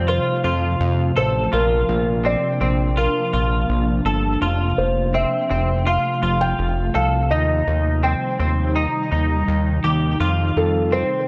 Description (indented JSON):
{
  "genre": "dream pop",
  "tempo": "83 BPM",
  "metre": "4/4",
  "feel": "straight",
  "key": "F major",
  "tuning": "A4 = 439 Hz",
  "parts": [
    { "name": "felt-muted upright piano", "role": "melody", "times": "0.0-11.3 s", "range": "A4 to G5", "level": "-25 LUFS", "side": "equal", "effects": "digital delay" },
    { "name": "ethereal airy pad", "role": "sustained chords", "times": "0.0-11.3 s", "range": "C3 to F4", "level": "-27 LUFS", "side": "equal", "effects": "ensemble chorus, built-in reverb" },
    { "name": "semi-hollow electric guitar", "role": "arpeggios", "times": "0.0-11.3 s", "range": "C4 to A4", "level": "-26 LUFS", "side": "equal", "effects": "ensemble chorus, digital delay" },
    { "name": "fat analog bass", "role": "bass", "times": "0.0-11.0 s", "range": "F1 to F2", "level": "-23 LUFS", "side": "equal", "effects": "none" }
  ],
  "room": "light reverb, digital ambience",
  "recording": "dark, warm production",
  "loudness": "-20 LUFS",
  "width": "mono",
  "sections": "0.0-11.3 A section",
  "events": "none",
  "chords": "0.0 F; 1.5 Bbadd9; 4.4 F; 7.3 Cm/Eb; 10.2 F"
}